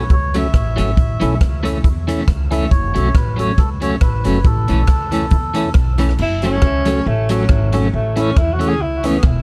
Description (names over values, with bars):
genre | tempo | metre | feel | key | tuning
ska | 138 BPM | 4/4 | swing 56% on 8ths | unclear | A4 = 439 Hz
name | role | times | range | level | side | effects
melodica | melody | 0.0-5.7 s | A4 to E5 | -28 LUFS | equal | dub echo
electric guitar at the edge of break-up | accompaniment | 0.0-9.2 s | E3 to C#4 | -23 LUFS | equal | tremolo
percussive tonewheel organ | stabs | 0.0-9.2 s | C#4 to A4 | -25 LUFS | equal | slow rotary speaker
upright bass | bass | 0.0-9.4 s | E1 to E2 | -22 LUFS | equal | none
swinging big-band drum kit | drums | 0.1-9.3 s | crash cymbal, hi-hat, kick drum, rim click | -20 LUFS | equal | none
warm tenor saxophone | melody | 6.2-9.2 s | F#3 to G#4 | -23 LUFS | equal | dub echo
room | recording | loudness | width
little or no reverb | dark, warm production | -16 LUFS | mono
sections
0.0-6.2 A section; 6.2-9.4 B section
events
tenor saxophone solo 6.2-9.4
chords
0.0 F#m; 1.0 A; 2.7 F#m; 4.5 A; 6.2 F#m; 7.9 A